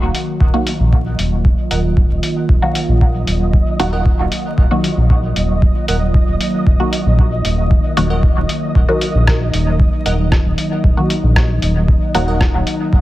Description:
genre	dub techno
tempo	115 BPM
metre	4/4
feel	straight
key	Eb minor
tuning	A4 = 440 Hz
part	warbly tape-like pad	sustained chords	0.0-13.0 s	Eb3 to Gb4	-22 LUFS	right 1 dB	chorus, built-in reverb, sidechain pumping
part	round analog bass	bass	0.0-13.0 s	Eb1 to Bb1	-17 LUFS	equal	sidechain pumping
part	lo-fi sampler-style drum kit	drums	0.1-12.8 s	hi-hat, rim click	-22 LUFS	left 1 dB	dub echo
part	electronic kick drum	drums	0.4-13.0 s	none	-15 LUFS	equal	overdrive
part	flickering grainy texture	texture	0.7-13.0 s	Eb5	-27 LUFS	right 1 dB	built-in reverb, sidechain pumping
part	filtered dub chord stab	stabs	0.5-12.3 s	Eb3 to Gb4	-21 LUFS	equal	phaser, sidechain pumping, dub echo
part	wavetable chord stab	riff	1.7-12.4 s	Bb4 to Gb5	-28 LUFS	right 2 dB	vintage 12-bit sampler grit, sidechain pumping, dub echo
room	little or no reverb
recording	vinyl crackle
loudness	-12 LUFS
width	side -16 dB against mid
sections	0.0-13.0 A section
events	none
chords	0.0 Ebm

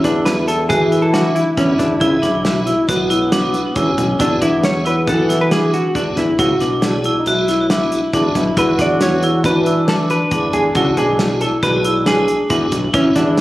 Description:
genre	progressive instrumental, band music in an uneven meter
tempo	137 BPM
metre	5/4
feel	straight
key	E mixolydian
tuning	A4 = 439 Hz
part	hollow-body jazz guitar	melody	0.0-13.4 s	C#4 to D5	-18 LUFS	equal	plate reverb
part	mellow flugelhorn	second line	0.0-13.4 s	B3 to F#4	-23 LUFS	left 1 dB	plate reverb
part	tonewheel organ	accompaniment	0.0-13.4 s	F#3 to G#4	-24 LUFS	equal	chorus vibrato, fast rotary speaker, plate reverb
part	vibraphone with hard mallets	arpeggios	0.0-13.4 s	D4 to F#4	-19 LUFS	right 1 dB	plate reverb, tape echo
part	fat analog bass	bass	0.0-13.4 s	B1 to E3	-20 LUFS	equal	none
part	warm soul drum kit	drums	0.0-13.4 s	hi-hat, kick drum, snare drum	-22 LUFS	equal	none
room	light reverb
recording	recorded on a phone in the room, club reverb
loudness	-13 LUFS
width	side -16 dB against mid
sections	0.0-13.4 A section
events	none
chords	0.0 Eadd9

